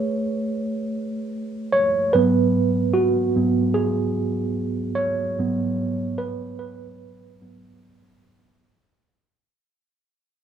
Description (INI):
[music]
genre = soul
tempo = 74 BPM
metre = 4/4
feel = straight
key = unclear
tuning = A4 = 440 Hz
[part]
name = mellow tine electric piano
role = solo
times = 0.0-8.7 s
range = G#2 to C#5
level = -20 LUFS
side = right 2 dB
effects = medium stereo tremolo
[sound]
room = wet studio reverb, RT60 0.5 s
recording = home recording on cassette, small room ambience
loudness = -20 LUFS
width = side -8 dB against mid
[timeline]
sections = 0.0-2.1 A section; 2.1-8.6 B section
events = fade-out 2.1-8.6; tine electric piano solo 2.1-8.6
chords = 0.0 Amaj9; 2.1 G#m7